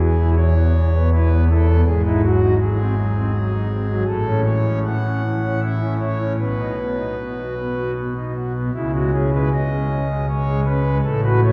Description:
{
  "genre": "classical, chorale-style piece for pipe organ",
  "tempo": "75-82 BPM",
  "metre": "3/4",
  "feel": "rubato",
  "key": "unclear",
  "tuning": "A4 = 439 Hz",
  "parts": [
    { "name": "pipe organ, foundations", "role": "solo", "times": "0.0-11.5 s", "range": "E1 to F#5", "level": "-19 LUFS", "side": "equal", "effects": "none" }
  ],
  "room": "wet cathedral reverb, RT60 4.7 s",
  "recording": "heard from further back in the room, small room ambience",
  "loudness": "-20 LUFS",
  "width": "mono",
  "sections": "0.0-11.5 A section",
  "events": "none",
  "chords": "0.0 E5; 1.9 G#7; 4.1 A; 6.4 B; 8.7 C#5"
}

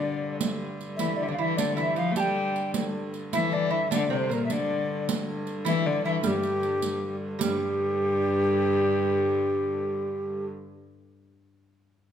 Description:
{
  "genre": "medieval dance",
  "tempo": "103 BPM (dotted quarters)",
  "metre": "6/8",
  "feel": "straight",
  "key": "unclear",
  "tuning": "A4 = 440 Hz",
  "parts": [
    { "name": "mellow hollow alto recorder", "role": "melody", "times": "0.0-10.5 s", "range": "G4 to A5", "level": "-27 LUFS", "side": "equal", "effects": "none" },
    { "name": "clear viola da gamba", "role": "second line", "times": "0.0-10.5 s", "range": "G2 to A3", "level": "-30 LUFS", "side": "left 6 dB", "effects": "none" },
    { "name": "lute", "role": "second line", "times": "0.0-11.2 s", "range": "G3 to G4", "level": "-34 LUFS", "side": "right 8 dB", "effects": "none" },
    { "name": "dark hurdy-gurdy", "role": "drone", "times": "0.0-10.5 s", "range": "G2 to D3", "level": "-35 LUFS", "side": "right 1 dB", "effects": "none" },
    { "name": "riq", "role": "percussion", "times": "0.4-7.6 s", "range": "none", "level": "-32 LUFS", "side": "right 5 dB", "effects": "none" }
  ],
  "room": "moderate recital hall reverb, RT60 1.5 s",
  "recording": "close, detailed microphones",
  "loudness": "-24 LUFS",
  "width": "side -9 dB against mid",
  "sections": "0.0-7.4 A section; 7.4-9.7 B section",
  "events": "none",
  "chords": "none"
}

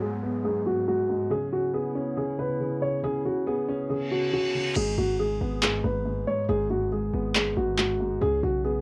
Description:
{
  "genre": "hip hop, trap",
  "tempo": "139 BPM",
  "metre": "4/4",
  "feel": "half-time",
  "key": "unclear",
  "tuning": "A4 = 440 Hz",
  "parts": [
    { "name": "dark concert grand piano", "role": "melody", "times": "0.0-8.8 s", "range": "F#4 to C#5", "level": "-30 LUFS", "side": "equal", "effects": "low-pass filter" },
    { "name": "dark concert grand piano", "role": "accompaniment", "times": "0.0-8.8 s", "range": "G#2 to C#4", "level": "-33 LUFS", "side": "equal", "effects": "low-pass filter" },
    { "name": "warbly tape-like pad", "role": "sustained chords", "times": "0.0-4.7 s", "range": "G#2 to E4", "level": "-40 LUFS", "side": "equal", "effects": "chorus, built-in reverb, low-pass filter" },
    { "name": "downlifter and reverse cymbal", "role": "sound effects", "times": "0.0-1.3, 4.0-4.8 s", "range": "none", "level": "-38 LUFS", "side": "equal", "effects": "none" },
    { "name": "hard-hitting 808-style bass", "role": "bass", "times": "4.8-8.8 s", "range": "G#1 to C#2", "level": "-33 LUFS", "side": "equal", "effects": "none" },
    { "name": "booming analog drum machine", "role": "drums", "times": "4.8-7.9 s", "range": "crash cymbal, handclaps", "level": "-30 LUFS", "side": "equal", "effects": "overdrive" }
  ],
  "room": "moderate booth ambience, RT60 0.2 s",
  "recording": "home recording on cassette",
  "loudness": "-27 LUFS",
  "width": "mono",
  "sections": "0.0-4.8 A section; 4.8-8.8 B section",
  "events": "filter sweep 0.0-4.8; reverse cymbal 4.0-4.8; hi-hats muted 4.8-8.8",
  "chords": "0.0 G#m7; 1.3 C#m7; 4.8 G#m7; 8.2 C#5"
}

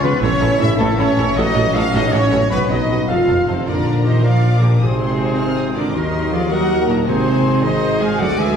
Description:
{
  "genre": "cinematic, heroic adventure film score",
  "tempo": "106 BPM (dotted quarters)",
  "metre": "6/8",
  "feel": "straight",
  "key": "unclear",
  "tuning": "A4 = 445 Hz",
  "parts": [
    { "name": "warm symphonic violin section", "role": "melody", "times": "0.0-8.6 s", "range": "A4 to F6", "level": "-29 LUFS", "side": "left 3 dB", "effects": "none" },
    { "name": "bright silver concert flute", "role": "second line", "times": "0.0-8.6 s", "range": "A4 to Ab5", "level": "-26 LUFS", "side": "left 1 dB", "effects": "none" },
    { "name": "warm oboe", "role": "second line", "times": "0.0-3.4 s", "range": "E4 to Cb5", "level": "-30 LUFS", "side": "right 2 dB", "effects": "none" },
    { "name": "warm symphonic violin section", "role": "second line", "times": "0.0-8.6 s", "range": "Bb4 to A5", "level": "-29 LUFS", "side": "left 2 dB", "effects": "none" },
    { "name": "warm symphonic viola section", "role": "accompaniment", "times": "0.0-8.6 s", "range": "Bb3 to A4", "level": "-29 LUFS", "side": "right 2 dB", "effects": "none" },
    { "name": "dark trombone section", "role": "sustained chords", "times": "0.0-8.6 s", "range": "D3 to Db4", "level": "-27 LUFS", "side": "right 2 dB", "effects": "none" },
    { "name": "mellow French horn section", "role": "sustained chords", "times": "0.0-8.6 s", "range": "A3 to Ab4", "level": "-22 LUFS", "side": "equal", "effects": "none" },
    { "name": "concert harp", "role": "arpeggios", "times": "0.0-8.6 s", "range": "Ab2 to Ab5", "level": "-27 LUFS", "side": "left 4 dB", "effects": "none" },
    { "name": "warm trumpet section", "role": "stabs", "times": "0.0-8.6 s", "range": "Gb4 to F5", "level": "-24 LUFS", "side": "equal", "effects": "none" },
    { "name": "dark symphonic cello section", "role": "bass", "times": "0.0-8.6 s", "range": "F2 to Ab3", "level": "-21 LUFS", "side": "right 2 dB", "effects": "none" },
    { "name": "rich symphonic double bass section", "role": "bass", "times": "0.0-8.6 s", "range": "F1 to Eb2", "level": "-21 LUFS", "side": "equal", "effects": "none" },
    { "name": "warm tuba", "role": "bass", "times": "0.0-8.6 s", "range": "F1 to Eb2", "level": "-24 LUFS", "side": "right 2 dB", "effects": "none" },
    { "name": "mellow clarinet", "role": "second line", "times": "3.5-8.6 s", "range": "D4 to C5", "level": "-28 LUFS", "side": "left 2 dB", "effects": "none" }
  ],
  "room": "wet scoring stage reverb, RT60 1.7 s",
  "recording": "heard from further back in the room",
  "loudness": "-14 LUFS",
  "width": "side -7 dB against mid",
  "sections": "0.0-3.7 A section; 3.7-8.6 B section",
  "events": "none",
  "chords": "0.2 A; 1.4 Gbm/A; 2.5 Cb; 3.1 F7; 3.7 Bb; 4.8 Ab; 5.9 Ebm; 7.1 Ab"
}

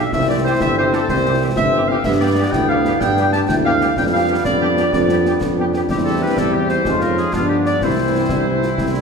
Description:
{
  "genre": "military-style march for wind band",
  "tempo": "125 BPM (dotted quarters)",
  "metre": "6/8",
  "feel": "straight",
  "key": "C major",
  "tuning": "A4 = 439 Hz",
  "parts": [
    { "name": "warm trumpet section", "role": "melody", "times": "0.0-9.0 s", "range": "D4 to G4", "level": "-27 LUFS", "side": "equal", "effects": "none" },
    { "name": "clear woodwind section", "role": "second line", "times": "0.0-9.0 s", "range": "F4 to A5", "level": "-20 LUFS", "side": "left 1 dB", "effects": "none" },
    { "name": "mellow euphonium", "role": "second line", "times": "0.0-9.0 s", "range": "B3 to F4", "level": "-25 LUFS", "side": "equal", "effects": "none" },
    { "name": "mellow French horn section", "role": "accompaniment", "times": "0.0-9.0 s", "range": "E3 to E4", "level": "-26 LUFS", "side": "left 5 dB", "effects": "none" },
    { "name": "clear trombone section", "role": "sustained chords", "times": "0.0-9.0 s", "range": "D3 to Db4", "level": "-27 LUFS", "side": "right 1 dB", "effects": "none" },
    { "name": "mellow tuba", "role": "bass", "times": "0.0-9.0 s", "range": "G1 to G2", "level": "-19 LUFS", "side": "right 2 dB", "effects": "none" },
    { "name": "concert snare drum, concert bass drum and clash cymbals", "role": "drums", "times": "0.1-9.0 s", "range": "none", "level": "-25 LUFS", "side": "left 1 dB", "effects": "none" }
  ],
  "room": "wet scoring stage reverb, RT60 2.0 s",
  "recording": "minimal, uncompressed stereo recording",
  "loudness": "-14 LUFS",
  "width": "side -5 dB against mid",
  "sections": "0.0-9.0 A section",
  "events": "none",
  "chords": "0.1 C; 2.1 G; 4.0 G7/F; 5.9 C/E; 6.9 Db/F; 7.3 G7; 7.8 C"
}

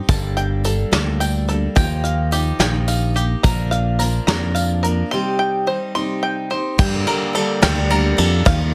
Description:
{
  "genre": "indie folk with a building arrangement",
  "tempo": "72 BPM (dotted quarters)",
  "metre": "6/8",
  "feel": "straight",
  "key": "G minor",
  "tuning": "A4 = 440 Hz",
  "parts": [
    { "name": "picked steel-string acoustic guitar", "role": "accompaniment", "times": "0.0-8.7 s", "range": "G2 to Bb4", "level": "-26 LUFS", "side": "equal", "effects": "none" },
    { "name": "bluegrass banjo", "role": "arpeggios", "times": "0.1-8.7 s", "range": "G4 to C6", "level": "-26 LUFS", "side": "equal", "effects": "none" },
    { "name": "fingered electric bass", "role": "bass", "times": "0.1-8.7 s", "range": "G1 to G2", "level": "-22 LUFS", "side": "equal", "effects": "none" },
    { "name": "soft brush drum kit", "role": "drums", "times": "0.1-8.6 s", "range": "crash cymbal, hi-hat, kick drum, ride cymbal, snare drum", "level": "-21 LUFS", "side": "equal", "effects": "soft clipping on kick" },
    { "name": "tambourine", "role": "percussion", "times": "0.1-4.8 s", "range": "none", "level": "-34 LUFS", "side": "equal", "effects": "none" },
    { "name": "pedal harmonium", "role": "sustained chords", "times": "6.8-8.7 s", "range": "D3 to G4", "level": "-28 LUFS", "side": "equal", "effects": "none" }
  ],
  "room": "light reverb, studio ambience",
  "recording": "dense, heavily limited modern master",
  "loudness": "-19 LUFS",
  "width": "mono",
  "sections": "0.0-6.8 A section; 6.8-8.7 B section",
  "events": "none",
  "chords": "0.1 Gmadd9; 1.8 Ebadd9; 3.4 Bb; 5.1 Cm; 6.8 Gmadd9"
}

